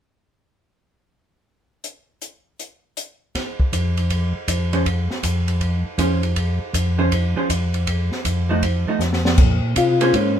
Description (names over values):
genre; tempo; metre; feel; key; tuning
soul jazz organ trio; 159 BPM; 4/4; swing 65% on 8ths; unclear; A4 = 439 Hz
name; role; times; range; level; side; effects
open jazz drum kit; drums; 1.8-10.3 s; crash cymbal, hi-hat, kick drum, ride cymbal, snare drum; -23 LUFS; equal; none
mellow tonewheel organ; bass; 3.7-10.4 s; F2 to C3; -20 LUFS; equal; chorus vibrato, slow rotary speaker
vintage hollow-body jazz guitar; accompaniment; 4.7-10.4 s; F3 to C5; -21 LUFS; right 3 dB; none
percussive tonewheel organ; melody; 9.8-10.4 s; Db4 to F4; -17 LUFS; left 4 dB; slow rotary speaker, chorus vibrato
room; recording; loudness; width
light reverb; minimal, uncompressed stereo recording; -18 LUFS; side -9 dB against mid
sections
1.8-3.3 A section; 3.3-9.4 B section; 9.4-10.4 C section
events
drum fill 9.0-9.4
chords
1.8 N.C.; 3.3 Fm; 7.9 F7b9; 9.4 Bbm9